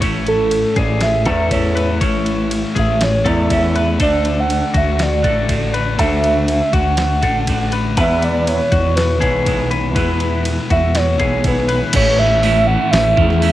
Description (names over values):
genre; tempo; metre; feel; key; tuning
rock, shoegaze and dream pop; 121 BPM; 4/4; straight; A major; A4 = 443 Hz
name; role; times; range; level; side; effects
twelve-string electric guitar; arpeggios; 0.0-11.9 s; F#4 to C#5; -24 LUFS; left 7 dB; lush chorus, cassette tape, analog delay
biting overdriven guitar; riff; 0.0-13.5 s; A2 to F#4; -24 LUFS; right 8 dB; reverse reverb, cassette tape
thick fuzz guitar; riff; 0.0-13.5 s; E2 to D4; -23 LUFS; left 6 dB; distortion, wide subtle chorus, cassette tape
growling fingered electric bass; bass; 0.0-13.5 s; A1 to E2; -18 LUFS; equal; overdrive
detuned 8-bit digital drum machine; drums; 0.0-13.5 s; crash cymbal, hi-hat, kick drum, ride cymbal, snare drum; -22 LUFS; equal; cassette tape
warbly nostalgic lead; melody; 0.3-13.5 s; A4 to F#5; -19 LUFS; right 2 dB; chorus, analog delay
room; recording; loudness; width
little or no reverb; home recording on cassette; -13 LUFS; side -14 dB against mid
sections
0.0-11.9 A section; 11.9-13.5 B section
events
none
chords
0.0 A; 4.0 Dadd9; 8.0 E; 11.9 A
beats
| 0.02 0.52 1.01 1.51 | 2.01 2.51 3.00 3.50 | 4.00 4.50 4.99 5.49 | 5.99 6.48 6.98 7.48 | 7.97 8.47 8.96 9.46 | 9.96 10.45 10.95 11.44 | 11.94 12.43 12.93 13.42